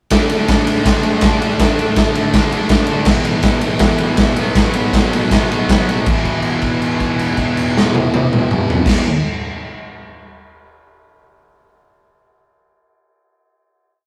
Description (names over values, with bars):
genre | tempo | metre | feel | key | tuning
garage rock duo or trio | 160 BPM | 4/4 | straight | unclear | A4 = 436 Hz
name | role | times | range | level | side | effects
thick fuzz guitar | riff | 0.1-9.0 s | E2 to D4 | -19 LUFS | equal | distortion
raw garage drum kit | drums | 0.1-9.0 s | crash cymbal, kick drum, ride cymbal, snare drum, toms | -17 LUFS | equal | none
room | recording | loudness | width
moderate stone room reverb, RT60 1.3 s | rough rehearsal-room recording | -15 LUFS | mono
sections
0.1-6.1 pre-chorus; 6.1-9.1 final chord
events
held note 6.1-8.9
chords
0.1 D5; 3.1 E5; 4.4 B5; 6.1 E5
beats
| 0.12 0.49 0.86 1.23 | 1.60 1.97 2.33 2.70 | 3.07 3.44 3.82 4.19 | 4.56 4.94 5.31 5.69 | 6.06 6.44 6.82 7.20 | 7.58 7.95 8.33 8.71